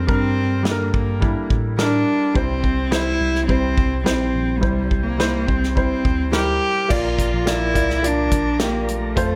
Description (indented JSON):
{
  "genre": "piano-driven pop",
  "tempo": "106 BPM",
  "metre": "4/4",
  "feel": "straight",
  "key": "unclear",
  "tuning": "A4 = 440 Hz",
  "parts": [
    { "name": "dark cello", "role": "melody", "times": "0.0-9.4 s", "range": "G3 to G4", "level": "-24 LUFS", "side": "equal", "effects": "none" },
    { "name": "clear concert grand piano", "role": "accompaniment", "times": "0.0-9.4 s", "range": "G2 to D5", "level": "-26 LUFS", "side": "equal", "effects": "none" },
    { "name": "mellow tine electric piano", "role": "bass", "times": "0.0-9.4 s", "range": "Bb1 to A2", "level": "-27 LUFS", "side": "equal", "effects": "none" },
    { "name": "natural country drum kit", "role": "drums", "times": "0.1-9.3 s", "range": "crash cymbal, hi-hat, kick drum, snare drum", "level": "-25 LUFS", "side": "equal", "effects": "none" },
    { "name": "tonewheel organ", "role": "sustained chords", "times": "6.9-9.4 s", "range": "F3 to Bb5", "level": "-34 LUFS", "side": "equal", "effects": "fast rotary speaker" }
  ],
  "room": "light reverb, studio reverb",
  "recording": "none",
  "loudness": "-20 LUFS",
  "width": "mono",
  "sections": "0.0-6.9 A section; 6.9-9.4 B section",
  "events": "none",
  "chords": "0.0 Gm; 2.4 C; 6.9 Bb"
}